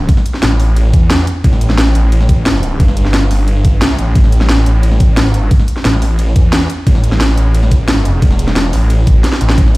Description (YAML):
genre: dark technical drum and bass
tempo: 177 BPM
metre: 4/4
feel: straight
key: unclear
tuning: A4 = 442 Hz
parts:
  - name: snarling distorted saw bass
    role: bass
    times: 0.0-9.8 s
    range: E1 to E2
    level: -12 LUFS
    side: equal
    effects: overdrive, sidechain pumping
  - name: drum and bass drum kit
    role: drums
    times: 0.1-9.8 s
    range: hi-hat, ride cymbal, snare drum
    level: -16 LUFS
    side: equal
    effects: overdrive
  - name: electronic kick drum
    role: drums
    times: 0.1-9.6 s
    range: none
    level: -10 LUFS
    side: equal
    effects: overdrive
room: little or no reverb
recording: played on a big sound system in a bare room, stone room reverb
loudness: -9 LUFS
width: side -21 dB against mid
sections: 0.0-9.8 A section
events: drum fill 9.2-9.6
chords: none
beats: | 0.09 0.43 0.77 1.10 | 1.44 1.78 2.12 2.46 | 2.80 3.14 3.48 3.82 | 4.16 4.49 4.83 5.17 | 5.51 5.85 6.19 6.53 | 6.87 7.21 7.54 7.88 | 8.22 8.56 8.90 9.24 | 9.58